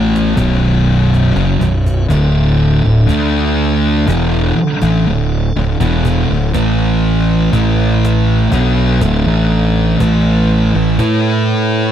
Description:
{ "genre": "stoner and doom metal", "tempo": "61 BPM", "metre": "4/4", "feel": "straight", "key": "unclear", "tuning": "A4 = 440 Hz", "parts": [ { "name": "tonewheel organ", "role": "sustained chords", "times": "0.0-11.9 s", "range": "A3 to F#5", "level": "-25 LUFS", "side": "right 1 dB", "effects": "slow rotary speaker" }, { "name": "thick fuzz guitar", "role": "riff", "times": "0.0-11.9 s", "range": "B1 to A4", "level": "-16 LUFS", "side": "left 8 dB", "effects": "distortion" }, { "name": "thick fuzz guitar", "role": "riff", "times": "0.0-11.9 s", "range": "B1 to A4", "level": "-15 LUFS", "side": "right 7 dB", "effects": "distortion" }, { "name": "fuzz fingered electric bass", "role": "bass", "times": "0.0-11.9 s", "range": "B0 to A2", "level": "-16 LUFS", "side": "equal", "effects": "overdrive" }, { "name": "cajon", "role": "drums", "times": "0.2-11.2 s", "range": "none", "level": "-19 LUFS", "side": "equal", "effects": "none" } ], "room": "little or no reverb", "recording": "dry, close 1970s-style studio recording", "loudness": "-11 LUFS", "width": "side -10 dB against mid", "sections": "0.0-11.9 A section", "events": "drum fill 1.1-2.1", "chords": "0.0 B5; 2.1 D5; 6.6 A5; 8.5 D5; 10.0 A5" }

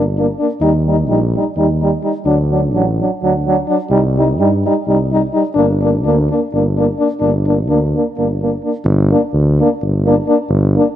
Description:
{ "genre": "balkan folk, Balkan brass band", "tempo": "255 BPM (eighths)", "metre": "7/8", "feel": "straight", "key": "G harmonic minor", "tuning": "A4 = 441 Hz", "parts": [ { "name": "warm French horn", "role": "accompaniment", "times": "0.0-10.9 s", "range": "D4 to Eb4", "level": "-17 LUFS", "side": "left 4 dB", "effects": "none" }, { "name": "warm euphonium", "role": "accompaniment", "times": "0.0-10.8 s", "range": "F#3 to Bb3", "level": "-18 LUFS", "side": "right 4 dB", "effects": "none" }, { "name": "dark tuba", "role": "bass", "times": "0.0-10.8 s", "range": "G1 to G2", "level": "-16 LUFS", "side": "equal", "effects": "none" } ], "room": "light reverb", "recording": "nothing above 10.5 kHz", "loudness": "-12 LUFS", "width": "side -11 dB against mid", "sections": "0.0-8.8 A section; 8.8-11.0 B section", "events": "none", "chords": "0.0 Gm; 0.6 Eb; 2.3 D; 3.9 Cm; 5.6 Gm" }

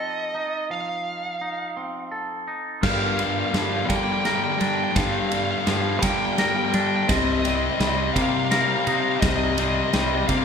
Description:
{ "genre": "post-rock", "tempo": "56 BPM (dotted quarters)", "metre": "6/8", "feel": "straight", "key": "G minor", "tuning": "A4 = 440 Hz", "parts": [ { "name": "dark smooth lead guitar", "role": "melody", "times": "0.0-10.4 s", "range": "Eb5 to G5", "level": "-27 LUFS", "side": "right 2 dB", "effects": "overdrive" }, { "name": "twangy electric guitar", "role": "arpeggios", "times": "0.0-10.4 s", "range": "G2 to Bb4", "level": "-28 LUFS", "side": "equal", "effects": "none" }, { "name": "pedal steel guitar", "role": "sustained chords", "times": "2.8-10.4 s", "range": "C4 to G5", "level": "-34 LUFS", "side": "right 3 dB", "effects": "none" }, { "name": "sludgy distorted guitar", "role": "riff", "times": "2.8-10.4 s", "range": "G2 to C4", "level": "-25 LUFS", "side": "left 6 dB", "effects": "overdrive" }, { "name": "fuzz fingered electric bass", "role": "bass", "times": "2.8-10.4 s", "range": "C2 to G3", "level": "-27 LUFS", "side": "right 1 dB", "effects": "overdrive" }, { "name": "big rock drum kit", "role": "drums", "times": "2.8-10.4 s", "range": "crash cymbal, kick drum, ride cymbal, snare drum", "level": "-27 LUFS", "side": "right 1 dB", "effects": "none" } ], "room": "wet recital hall reverb, RT60 1.4 s", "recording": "recorded in a church or concert hall", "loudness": "-20 LUFS", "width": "side -6 dB against mid", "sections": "0.0-2.8 A section; 2.8-10.4 B section", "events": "build-up 2.8-10.4; drum fill 2.8-10.4", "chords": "0.0 F7; 2.8 Gm7; 7.1 Cm7" }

